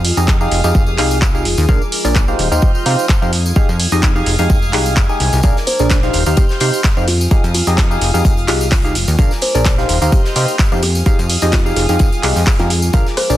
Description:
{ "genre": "piano house", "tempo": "128 BPM", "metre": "4/4", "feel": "swing 54% on 16ths", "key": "F dorian", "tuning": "A4 = 438 Hz", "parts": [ { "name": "warm chamber violin section", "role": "sustained chords", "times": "0.0-13.4 s", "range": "Bb4 to Ab6", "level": "-27 LUFS", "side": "right 1 dB", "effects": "sidechain pumping" }, { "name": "plucky analog bass", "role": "bass", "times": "0.0-13.4 s", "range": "Eb1 to C3", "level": "-17 LUFS", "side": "equal", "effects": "sidechain pumping" }, { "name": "punchy analog drum machine", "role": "drums", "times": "0.0-13.3 s", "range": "handclaps, hi-hat, rim click", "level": "-20 LUFS", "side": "right 1 dB", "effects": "none" }, { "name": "deep dark ambient pad", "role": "texture", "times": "0.0-13.4 s", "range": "Ab3 to Eb5", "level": "-29 LUFS", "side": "left 1 dB", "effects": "none" }, { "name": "percussive organ stab", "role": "riff", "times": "0.2-13.4 s", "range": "D4 to Ab5", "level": "-19 LUFS", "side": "equal", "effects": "chorus, phaser, sidechain pumping, tape echo" }, { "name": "tambourine", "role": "percussion", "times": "0.2-13.4 s", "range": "none", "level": "-28 LUFS", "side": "left 1 dB", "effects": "none" }, { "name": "electronic kick drum", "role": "drums", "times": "0.3-13.0 s", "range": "none", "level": "-14 LUFS", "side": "equal", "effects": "none" }, { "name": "big rock drum kit", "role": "drums", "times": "5.4-13.3 s", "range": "hi-hat, snare drum", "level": "-30 LUFS", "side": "left 3 dB", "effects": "high-pass filter on hats, high-pass filter on snare, high-pass filter on room" }, { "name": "kalimba", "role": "melody", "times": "5.7-13.4 s", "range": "F4 to C5", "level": "-23 LUFS", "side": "equal", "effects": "tape echo" } ], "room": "small room ambience", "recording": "dense, heavily limited modern master", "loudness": "-12 LUFS", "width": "side -14 dB against mid", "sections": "0.0-13.4 A section", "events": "none", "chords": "0.0 Fm9; 1.7 Bb7; 2.4 Eb69; 3.3 Fm9; 5.4 Bb7; 6.1 Eb69; 7.1 Fm9; 9.2 Bb7; 9.9 Eb69; 10.8 Fm9" }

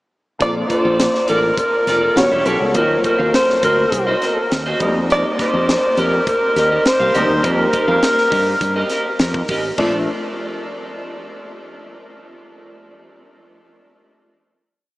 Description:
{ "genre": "polished 1980s jazz-funk pop", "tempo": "102 BPM", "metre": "4/4", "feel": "straight", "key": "Bb major", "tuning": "A4 = 436 Hz", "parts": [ { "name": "breathy alto saxophone", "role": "melody", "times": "0.4-9.2 s", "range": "A4 to D5", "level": "-17 LUFS", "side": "equal", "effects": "none" }, { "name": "warm concert grand piano", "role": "accompaniment", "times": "0.4-10.1 s", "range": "F3 to Gb4", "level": "-23 LUFS", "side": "left 1 dB", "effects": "ensemble chorus" }, { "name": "clean electric guitar", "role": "riff", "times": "0.4-10.0 s", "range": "E4 to F5", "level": "-23 LUFS", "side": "right 1 dB", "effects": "lush chorus" }, { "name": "fretless electric bass", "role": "bass", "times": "0.4-10.1 s", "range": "E1 to G2", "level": "-24 LUFS", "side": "equal", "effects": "none" }, { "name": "tight funk drum kit", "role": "drums", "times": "0.4-9.9 s", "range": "crash cymbal, hi-hat, kick drum, snare drum", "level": "-24 LUFS", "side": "equal", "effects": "none" } ], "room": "wet huge ambient reverb, RT60 7.3 s", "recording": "dreamy mix soaked in reverb, small speaker sound", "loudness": "-14 LUFS", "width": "side -19 dB against mid", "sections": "0.4-9.8 verse; 9.8-12.1 final chord", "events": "none", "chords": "0.4 Bbmaj7; 2.2 Em6; 2.7 Ebm6; 4.8 F9sus4; 9.8 Bbmaj7" }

